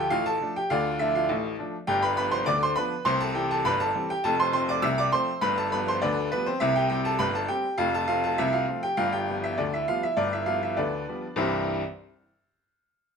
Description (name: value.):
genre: ragtime piano.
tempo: 101 BPM.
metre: 2/4.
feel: straight.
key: C major.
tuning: A4 = 440 Hz.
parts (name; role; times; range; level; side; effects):
clear upright piano; solo; 0.0-11.8 s; F1 to E6; -24 LUFS; equal; none.
room: wet studio reverb, RT60 0.8 s.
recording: minimal, uncompressed stereo recording.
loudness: -24 LUFS.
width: side -6 dB against mid.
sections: 0.0-11.4 A section; 11.4-12.6 B section.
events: none.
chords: 0.0 Dm; 1.9 G7; 3.1 C; 4.2 F; 5.4 G7; 6.6 C; 7.8 F; 9.0 G7; 11.4 C.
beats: 0.10 | 0.69 1.28 | 1.87 2.46 | 3.05 3.65 | 4.24 4.83 | 5.42 6.01 | 6.61 7.20 | 7.79 8.38 | 8.98 9.58 | 10.17 10.77 | 11.37.